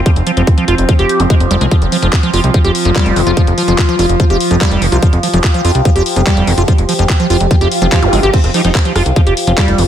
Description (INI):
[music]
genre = psychedelic trance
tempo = 145 BPM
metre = 4/4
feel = straight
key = unclear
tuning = A4 = 439 Hz
[part]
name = overtone-sweeping drone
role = sustained chords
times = 0.0-9.9 s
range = F3 to G4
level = -17 LUFS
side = equal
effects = chorus, built-in reverb, sidechain pumping
[part]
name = fat analog bass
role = bass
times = 0.0-9.8 s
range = F1 to C2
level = -14 LUFS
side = equal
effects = none
[part]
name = liquid acid bass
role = riff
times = 0.1-9.8 s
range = Eb3 to G4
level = -16 LUFS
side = right 1 dB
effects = chorus, auto-pan, sidechain pumping, digital delay
[part]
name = electronic kick drum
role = drums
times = 0.1-9.7 s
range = none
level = -11 LUFS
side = equal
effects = none
[part]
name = garage drum kit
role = drums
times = 0.1-9.9 s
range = crash cymbal, handclaps, hi-hat, rim click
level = -20 LUFS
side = left 2 dB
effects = none
[part]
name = swell and zap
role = sound effects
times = 7.6-8.3 s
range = none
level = -17 LUFS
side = right 3 dB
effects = none
[part]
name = metallic wobble bass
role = second line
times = 8.3-8.7 s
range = C4 to Eb4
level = -25 LUFS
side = right 4 dB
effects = wide subtle chorus, sidechain pumping, high-pass filter, digital delay
[sound]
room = light reverb, digital ambience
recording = none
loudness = -9 LUFS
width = side -10 dB against mid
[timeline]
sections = 0.0-9.9 A section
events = swell 7.6-8.3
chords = 0.0 F5